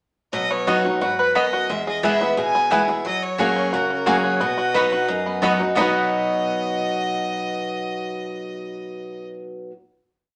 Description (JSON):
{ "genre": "bluegrass", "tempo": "176 BPM", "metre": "4/4", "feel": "straight", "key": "B major", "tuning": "A4 = 440 Hz", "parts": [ { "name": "clear fiddle", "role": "melody", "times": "0.3-9.3 s", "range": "A#4 to G#5", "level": "-30 LUFS", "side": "equal", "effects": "none" }, { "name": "picked steel-string acoustic guitar", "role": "accompaniment", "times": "0.3-9.7 s", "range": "E2 to G#4", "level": "-27 LUFS", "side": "equal", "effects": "none" }, { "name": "bluegrass banjo", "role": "arpeggios", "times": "0.3-9.7 s", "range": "F#3 to B4", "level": "-25 LUFS", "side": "equal", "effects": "none" }, { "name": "mandolin", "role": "stabs", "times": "0.7-9.7 s", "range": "A#3 to B5", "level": "-26 LUFS", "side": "equal", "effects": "none" } ], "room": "wet studio reverb, RT60 0.7 s", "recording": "none", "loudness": "-21 LUFS", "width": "mono", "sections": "0.3-5.8 A section; 5.8-8.5 final chord", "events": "none", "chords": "0.3 B; 1.7 E; 3.0 F#add9; 4.4 B", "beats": "| 0.33 0.67 1.01 1.35 | 1.69 2.03 2.37 2.71 | 3.05 3.39 3.73 4.07 | 4.41 4.75 5.08 5.42 | 5.76 6.11 6.45 6.79 | 7.13 7.47 7.81 8.15" }